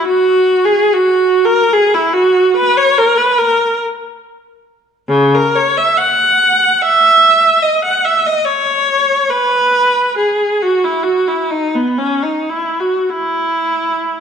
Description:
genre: classical, free, expressive piece for unaccompanied viola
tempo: 50-76 BPM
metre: 3/4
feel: rubato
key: unclear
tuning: A4 = 440 Hz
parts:
  - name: rich viola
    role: solo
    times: 0.0-14.2 s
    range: C#3 to F#5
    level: -11 LUFS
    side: equal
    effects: none
room: moderate scoring stage reverb, RT60 1.6 s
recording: dark, warm production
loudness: -10 LUFS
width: side -7 dB against mid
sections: 0.0-14.2 A section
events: none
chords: none

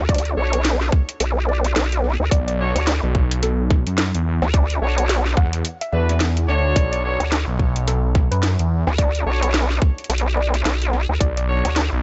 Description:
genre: glitch hop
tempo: 108 BPM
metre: 4/4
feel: swing 59% on 16ths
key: B minor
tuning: A4 = 440 Hz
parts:
  - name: vowel-sweep wobble bass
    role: bass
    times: 0.0-11.9 s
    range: B1 to D2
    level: -22 LUFS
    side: equal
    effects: chorus, tube saturation
  - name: woody wave-folded pluck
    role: melody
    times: 0.1-11.4 s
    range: A4 to F#5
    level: -33 LUFS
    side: equal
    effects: analog chorus, delay
  - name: drum and bass drum kit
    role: drums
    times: 0.1-11.9 s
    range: hi-hat, snare drum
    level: -27 LUFS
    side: equal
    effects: none
  - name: electronic kick drum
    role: drums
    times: 0.1-11.3 s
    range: none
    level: -19 LUFS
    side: equal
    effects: none
  - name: clear horn section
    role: stabs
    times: 0.4-11.7 s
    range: D4 to C#5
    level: -28 LUFS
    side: equal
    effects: vintage 12-bit sampler grit, sidechain pumping, delay
  - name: phased detuned saw bass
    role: bass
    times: 2.3-12.0 s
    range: B1 to F#2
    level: -22 LUFS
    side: equal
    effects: phaser, tube saturation
room: digital ambience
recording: nothing above 7.9 kHz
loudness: -20 LUFS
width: mono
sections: 0.0-12.0 A section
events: none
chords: 0.0 Bm7

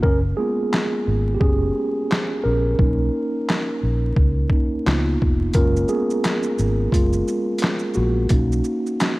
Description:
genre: lo-fi hip hop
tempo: 87 BPM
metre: 4/4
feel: swing 56% on 16ths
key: F# major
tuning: A4 = 440 Hz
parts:
  - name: mellow tine electric piano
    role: accompaniment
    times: 0.0-9.2 s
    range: G#3 to A#4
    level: -22 LUFS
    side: right 1 dB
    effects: medium stereo tremolo, low-pass filter
  - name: vintage muted fingered electric bass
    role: bass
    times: 0.0-8.6 s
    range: E#1 to C#2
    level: -21 LUFS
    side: equal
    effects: none
  - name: trip hop sampler-style drum kit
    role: drums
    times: 0.0-9.2 s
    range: handclaps, hi-hat, kick drum, shaker, snare drum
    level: -21 LUFS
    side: equal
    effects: overdrive
room: little or no reverb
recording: vinyl crackle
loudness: -18 LUFS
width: side -20 dB against mid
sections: 0.0-9.2 A section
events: break 0.0-5.5; tine electric piano solo 0.0-9.2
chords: 0.0 F#maj9; 2.8 Bmaj9; 4.9 C#13; 5.5 F#maj9; 8.3 Bmaj9

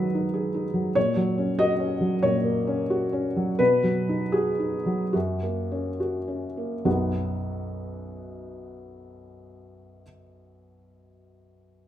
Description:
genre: neoclassical minimalist piano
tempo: 69-98 BPM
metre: 4/4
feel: rubato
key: B major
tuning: A4 = 441 Hz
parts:
  - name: felt-muted upright piano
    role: solo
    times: 0.0-11.9 s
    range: B1 to D#5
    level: -23 LUFS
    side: equal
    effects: none
room: moderate recital hall reverb, RT60 1.6 s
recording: minimal, uncompressed stereo recording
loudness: -23 LUFS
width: side -11 dB against mid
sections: 0.0-6.9 A section; 6.9-10.2 B section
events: slowing down 0.0-6.9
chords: 0.0 G#m7; 1.0 F#/A#; 3.6 B; 5.1 F#; 6.9 B

